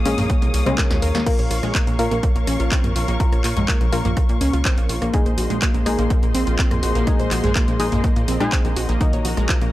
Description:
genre	melodic techno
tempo	124 BPM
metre	4/4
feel	straight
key	Bb minor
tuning	A4 = 438 Hz
part	muted studio string section	sustained chords	0.0-9.7 s	Gb4 to Eb6	-29 LUFS	left 1 dB	sidechain pumping
part	wide unison pluck	arpeggios	0.0-9.7 s	F3 to Db5	-25 LUFS	right 1 dB	sidechain pumping, analog delay
part	filtered dub chord stab	stabs	0.0-9.7 s	Db3 to Bb4	-26 LUFS	left 2 dB	chorus, sidechain pumping, analog delay
part	plucky analog bass	bass	0.0-9.7 s	Bb1 to Bb2	-23 LUFS	equal	sidechain pumping
part	bowed-like drone	drone	0.0-9.7 s	Bb2 to Bb3	-33 LUFS	left 2 dB	none
part	house drum kit	drums	0.1-9.7 s	crash cymbal, handclaps, hi-hat, rim click, snare drum, toms	-26 LUFS	equal	none
part	electronic kick drum	drums	0.3-9.6 s	none	-20 LUFS	equal	none
room	little or no reverb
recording	dry, gritty hardware recording, transformer saturation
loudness	-17 LUFS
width	side -15 dB against mid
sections	0.0-9.7 A section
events	drum fill 0.8-1.3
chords	0.0 Db/Bb; 1.3 Bbm; 5.1 Ab/Bb; 9.0 Ebm/Bb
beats	0.30 0.78 | 1.26 1.75 2.23 2.72 | 3.20 3.68 4.17 4.65 | 5.14 5.62 6.10 6.59 | 7.07 7.55 8.04 8.52 | 9.01 9.49

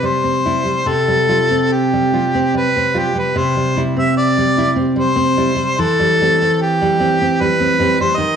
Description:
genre	romantic duo for harmonica and classical guitar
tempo	74 BPM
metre	3/4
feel	uneven beats, rubato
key	C major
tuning	A4 = 440 Hz
part	warm harmonica	melody	0.0-8.4 s	G4 to E5	-16 LUFS	left 1 dB	none
part	nylon-string guitar	accompaniment	0.0-8.4 s	C3 to F4	-16 LUFS	right 1 dB	none
room	moderate recital hall reverb, RT60 1.4 s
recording	none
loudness	-13 LUFS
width	side -7 dB against mid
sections	0.0-8.4 A section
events	none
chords	0.0 C; 0.9 Fadd9/C; 3.4 C; 5.8 C/E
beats	0.05 | 0.89 1.72 2.56 | 3.38 4.18 4.98 | 5.79 6.60 7.39 | 8.18

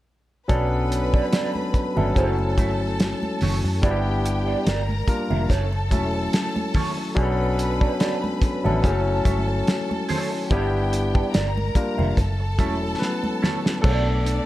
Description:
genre	lush 1970s-style soul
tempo	72 BPM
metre	4/4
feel	swing 54% on 16ths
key	B minor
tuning	A4 = 442 Hz
part	clear studio string section	second line	0.5-14.5 s	D4 to B5	-31 LUFS	equal	none
part	barky tine electric piano	accompaniment	0.5-14.5 s	F#3 to B4	-25 LUFS	left 2 dB	none
part	electric guitar through a small old amp	riff	0.5-14.3 s	A3 to E5	-31 LUFS	right 5 dB	wah, spring reverb
part	vintage muted fingered electric bass	bass	0.5-14.4 s	E1 to F#2	-24 LUFS	equal	none
part	cloth-damped thuddy drum kit	drums	0.5-14.5 s	crash cymbal, hi-hat, kick drum, snare drum	-23 LUFS	equal	none
part	congas	percussion	0.5-14.1 s	none	-32 LUFS	right 2 dB	none
room	light reverb, small room ambience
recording	dark, warm production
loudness	-20 LUFS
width	side -15 dB against mid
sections	0.5-13.8 A section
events	drum fill 13.0-13.8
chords	0.5 Bm7; 2.2 F#m7; 3.8 Em7/G; 4.7 Gm7; 5.5 F#m7; 7.2 Bm7; 8.8 F#m7; 10.5 Em7/G; 11.3 Gm7; 12.2 F#m7; 13.8 Bm7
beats	| 0.49 1.33 2.16 3.00 | 3.83 4.66 5.50 6.33 | 7.17 8.00 8.83 9.67 | 10.50 11.34 12.17 13.00 | 13.84

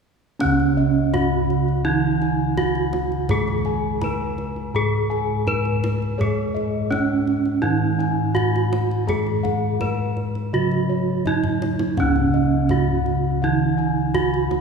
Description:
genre	Javanese gamelan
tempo	83 BPM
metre	4/4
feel	straight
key	Db slendro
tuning	A4 = 440 Hz
part	gamelan-type bronze metallophone	melody	0.4-14.6 s	Db4 to Cb5-45c	-23 LUFS	right 3 dB	none
part	gamelan-type bronze metallophone	accompaniment	0.4-14.6 s	Db3 to Ab3+25c	-25 LUFS	right 2 dB	none
part	gamelan-type bossed gongs	arpeggios	0.4-14.5 s	Db5 to Cb6-45c	-29 LUFS	left 6 dB	none
part	gamelan-type bossed gongs	bass	0.4-14.6 s	Db2 to Ab4+25c	-24 LUFS	equal	none
part	kendang	percussion	0.4-14.6 s	none	-30 LUFS	equal	none
room	wet church reverb, RT60 3.4 s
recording	recorded in a church or concert hall, studio reverb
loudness	-19 LUFS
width	side -5 dB against mid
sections	0.4-14.6 A section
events	drum fill 11.3-12.0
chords	none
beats	| 0.41 1.13 1.85 2.58 | 3.30 4.02 4.75 5.47 | 6.19 6.91 7.64 8.36 | 9.08 9.80 10.53 11.25 | 11.97 12.70 13.42 14.14

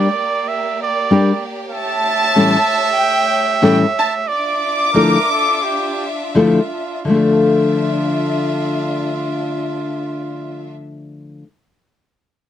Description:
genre	mexican folk, mariachi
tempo	82-98 BPM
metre	4/4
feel	swing 54% on 8ths, rubato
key	D harmonic minor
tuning	A4 = 440 Hz
part	rich studio violin section	melody	0.0-6.3 s	G5 to D6	-18 LUFS	left 1 dB	none
part	clear trumpet	second line	0.0-10.7 s	F4 to E5	-20 LUFS	right 6 dB	none
part	nylon-string guitar	accompaniment	0.0-11.5 s	A2 to Bb4	-15 LUFS	left 3 dB	none
part	clear studio violin section	sustained chords	0.0-10.7 s	A3 to E5	-26 LUFS	left 1 dB	none
room	little or no reverb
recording	dry, close 1970s-style studio recording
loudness	-14 LUFS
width	side -10 dB against mid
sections	0.0-7.1 A section; 7.1-9.9 B section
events	slowing down 1.7-7.1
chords	0.0 Gm; 1.7 A7; 4.3 Dmadd9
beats	0.49 1.11 | 1.73 2.35 2.98 3.62 | 4.28 4.95 5.63 6.35 | 7.07 7.79 8.51 9.22

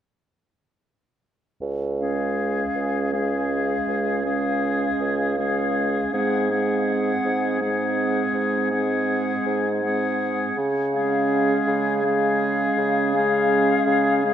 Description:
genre	classical, slow romantic movement for wind quintet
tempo	54 BPM (dotted quarters)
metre	12/8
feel	rubato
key	Db major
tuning	A4 = 440 Hz
part	mellow bassoon	bass	1.6-14.3 s	Db2 to Db3	-24 LUFS	right 1 dB	none
part	silver concert flute	melody	2.0-14.3 s	F5 to Gb5	-28 LUFS	left 6 dB	none
part	warm oboe	second line	2.0-14.3 s	Ab4	-27 LUFS	left 3 dB	none
part	warm French horn	accompaniment	2.0-14.3 s	Ab3	-29 LUFS	left 2 dB	none
part	warm clarinet	accompaniment	2.0-14.3 s	C4 to Db4	-27 LUFS	right 6 dB	none
room	wet huge ambient reverb, RT60 9.0 s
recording	in a vast, echoing space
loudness	-20 LUFS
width	side -10 dB against mid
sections	1.6-14.3 A section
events	none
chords	1.6 Db; 6.1 Ab7; 10.6 Db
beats	| 1.62 2.77 3.89 5.01 | 6.14 7.26 8.36 9.47 | 10.58 11.69 12.78 13.88

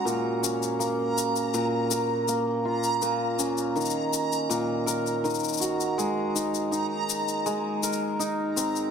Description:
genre	folktronica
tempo	81 BPM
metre	4/4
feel	straight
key	unclear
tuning	A4 = 440 Hz
part	hammered dulcimer	arpeggios	0.0-8.9 s	Bb2 to Db5	-26 LUFS	equal	low-pass filter, ping-pong delay
part	backwards swelling texture	texture	0.0-8.9 s	Bb5	-32 LUFS	right 2 dB	built-in reverb
part	shaker	drums	0.1-8.9 s	none	-31 LUFS	left 9 dB	overdrive
room	moderate echo chamber reverb, RT60 2.1 s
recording	none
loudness	-24 LUFS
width	side -7 dB against mid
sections	0.0-8.9 A section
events	filter sweep on hammered dulcimer 0.0-8.9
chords	0.1 Bbm; 6.0 Absus2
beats	| 0.05 0.79 1.53 2.27 | 3.02 3.76 4.50 5.24 | 5.98 6.72 7.46 8.20

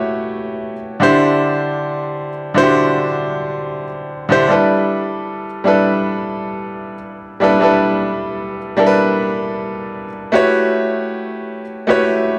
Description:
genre	soul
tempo	77 BPM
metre	4/4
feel	straight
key	G major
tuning	A4 = 439 Hz
part	clear grand piano	solo	0.0-12.4 s	D3 to C#5	-17 LUFS	equal	none
room	light reverb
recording	none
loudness	-17 LUFS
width	mono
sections	0.0-12.4 A section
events	none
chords	0.0 A13; 1.0 D9sus4; 4.5 G6; 10.3 A13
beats	0.63 | 1.41 2.18 2.96 3.73 | 4.51 5.29 6.06 6.84 | 7.62 8.39 9.17 9.95 | 10.72 11.50 12.27

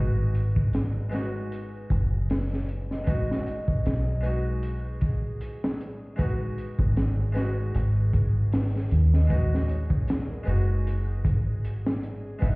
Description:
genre	trip hop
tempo	77 BPM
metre	4/4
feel	swing 56% on 16ths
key	G# minor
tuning	A4 = 440 Hz
part	vibraphone with soft mallets	melody	0.0-12.6 s	A#4 to D#5	-41 LUFS	equal	tape echo
part	harpsichord	accompaniment	0.0-12.6 s	G#3 to F#4	-36 LUFS	equal	tremolo, low-pass filter, tape echo
part	deep dub fingered electric bass	bass	0.0-12.6 s	F#1 to D#2	-25 LUFS	equal	none
part	bowed-like drone	texture	2.1-12.6 s	G#4	-47 LUFS	right 1 dB	built-in reverb
part	crunchy breakbeat drum kit	drums	0.3-12.6 s	hi-hat, kick drum, snare drum	-28 LUFS	equal	none
room	little or no reverb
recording	heard muffled through a wall, stone room reverb, vinyl crackle, EQ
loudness	-24 LUFS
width	side -28 dB against mid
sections	0.0-12.6 A section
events	none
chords	0.0 G#m7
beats	0.73 1.51 2.29 | 3.07 3.85 4.63 5.41 | 6.19 6.97 7.75 8.53 | 9.30 10.08 10.86 11.64 | 12.42

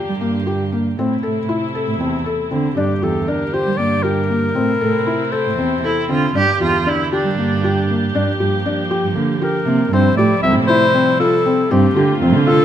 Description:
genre	contemporary instrumental, chamber music in an uneven meter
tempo	235 BPM (eighths)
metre	7/8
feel	straight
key	G dorian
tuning	A4 = 439 Hz
part	warm studio string section	sustained chords	0.0-12.6 s	C3 to G4	-24 LUFS	right 2 dB	none
part	felt-muted upright piano	arpeggios	0.0-12.6 s	Bb3 to A4	-20 LUFS	left 3 dB	none
part	dark cello	bass	0.1-12.6 s	C2 to G3	-19 LUFS	right 4 dB	none
part	warm clarinet	melody	2.8-6.1, 9.4-12.6 s	G4 to E5	-19 LUFS	left 3 dB	none
part	clear viola	second line	5.8-8.1 s	D4 to G4	-20 LUFS	right 4 dB	none
room	little or no reverb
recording	close, detailed microphones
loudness	-15 LUFS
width	side -10 dB against mid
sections	0.0-9.9 A section; 9.9-12.6 B section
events	none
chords	0.0 Gm; 1.0 Am; 2.8 Gm; 4.6 Am; 6.4 Gm; 8.1 Gm7; 9.9 Fmaj9/C; 11.7 Gm11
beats	0.22 0.47 0.73 | 0.98 1.24 1.50 1.75 2.01 2.26 2.52 | 2.77 3.03 3.29 3.54 3.80 4.05 4.31 | 4.57 4.82 5.08 5.33 5.59 5.84 6.10 | 6.35 6.61 6.87 7.12 7.38 7.63 7.89 | 8.14 8.40 8.65 8.91 9.16 9.42 9.67 | 9.93 10.18 10.44 10.69 10.95 11.20 11.46 | 11.71 11.97 12.22 12.48

